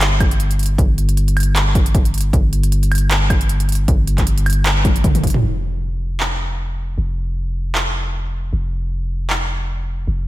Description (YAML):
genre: future bass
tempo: 155 BPM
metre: 4/4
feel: swing 56% on 16ths, half-time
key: unclear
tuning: A4 = 440 Hz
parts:
  - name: long sustained 808-style bass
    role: bass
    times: 0.0-10.3 s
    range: F1 to G1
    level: -18 LUFS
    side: equal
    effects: sidechain pumping
  - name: big-room dance drum kit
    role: drums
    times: 0.0-9.4 s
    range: handclaps, hi-hat, toms, woodblock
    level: -21 LUFS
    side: right 1 dB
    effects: none
  - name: electronic kick drum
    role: drums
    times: 0.2-5.3 s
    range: none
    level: -16 LUFS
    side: equal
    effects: none
room: little or no reverb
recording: none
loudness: -15 LUFS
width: side -16 dB against mid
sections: 0.0-5.4 A section; 5.4-10.3 B section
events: drop 0.0-5.4; drum fill 4.8-5.4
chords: none